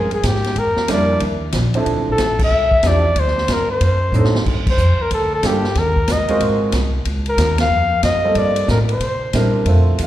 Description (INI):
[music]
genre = jazz, small-group swing and bop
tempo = 185 BPM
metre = 4/4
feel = swing 63% on 8ths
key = unclear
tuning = A4 = 439 Hz
[part]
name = warm flugelhorn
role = melody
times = 0.0-9.5 s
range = G4 to F5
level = -19 LUFS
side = left 1 dB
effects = slapback echo
[part]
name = upright bass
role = bass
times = 0.0-10.1 s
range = Ab1 to C3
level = -18 LUFS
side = equal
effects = none
[part]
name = swinging big-band drum kit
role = drums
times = 0.1-10.1 s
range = crash cymbal, hi-hat, kick drum, ride cymbal, snare drum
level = -23 LUFS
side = equal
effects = none
[part]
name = warm concert grand piano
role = accompaniment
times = 0.9-10.1 s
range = F3 to F5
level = -21 LUFS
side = right 2 dB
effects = slapback echo
[sound]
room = light reverb, small room ambience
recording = live gig heard through the venue's PA, recital hall reverb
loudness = -14 LUFS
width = side -13 dB against mid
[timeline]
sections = 0.0-9.7 A section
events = band accent 2.4, 4.6, 7.6; drum fill 4.1-4.5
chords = 0.0 N.C.; 0.6 Em7b5; 1.2 Eb5; 1.9 Dm11; 3.2 D7b9; 4.5 Gm9; 5.8 Ebm9; 6.4 Ab13; 7.1 Db6; 8.4 Gm11; 9.0 C9